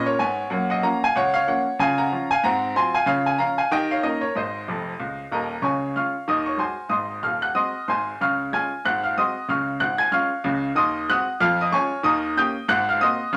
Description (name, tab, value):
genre	jazz, stride piano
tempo	187 BPM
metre	4/4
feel	swing 59% on 8ths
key	Db major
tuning	A4 = 441 Hz
part	bright upright piano	solo	0.0-13.4 s	Eb1 to Ab6	-23 LUFS	equal	none
room	wet studio ambience, RT60 0.5 s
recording	none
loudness	-23 LUFS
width	mono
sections	0.0-5.6 A section; 5.6-13.4 B section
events	upright piano fill 4.7-5.6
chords	0.0 F# (rootless); 0.5 Gbmaj7; 1.8 Db; 2.4 Ab13; 3.1 Db; 3.7 Eb7; 4.3 Ab; 5.6 Db; 6.3 Ab7/Eb; 6.9 Ab7; 8.2 Db; 8.8 Ab7; 9.5 Db; 10.8 Ab7/Eb; 11.4 Db/F; 12.0 Eb7; 12.7 Ab9